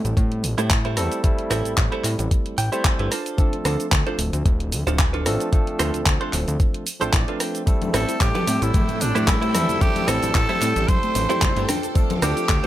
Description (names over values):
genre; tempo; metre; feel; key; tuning
nu-disco, nu disco; 112 BPM; 4/4; swing 55% on 16ths; A minor; A4 = 440 Hz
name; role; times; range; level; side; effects
barky tine electric piano; accompaniment; 0.0-12.7 s; F3 to C5; -28 LUFS; equal; sidechain pumping, ping-pong delay
direct-recorded clean electric guitar; riff; 0.0-12.7 s; D4 to G5; -28 LUFS; right 4 dB; lush chorus, ping-pong delay
fat analog bass; bass; 0.0-12.6 s; D1 to A2; -24 LUFS; equal; sidechain pumping
house drum kit; drums; 0.0-12.7 s; handclaps, hi-hat, rim click, shaker; -26 LUFS; equal; none
electronic kick drum; drums; 0.2-12.6 s; none; -20 LUFS; equal; overdrive
string machine, full ensemble; sustained chords; 7.7-12.7 s; A4 to E6; -32 LUFS; equal; ensemble chorus, sidechain pumping
soft round pluck; arpeggios; 7.7-12.7 s; G3 to A4; -30 LUFS; left 2 dB; chorus, sidechain pumping, tape echo
tube shaker and congas; percussion; 7.7-12.7 s; none; -29 LUFS; left 2 dB; none
raspy tenor saxophone; melody; 7.9-12.7 s; D4 to C5; -25 LUFS; right 1 dB; tape echo
room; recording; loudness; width
little or no reverb; none; -18 LUFS; side -13 dB against mid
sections
0.0-12.7 A section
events
clean electric guitar fill 2.3-3.4, 6.9-7.7, 11.2-12.0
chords
0.0 Am7; 3.1 Dm7; 7.7 Am7; 11.7 Dm7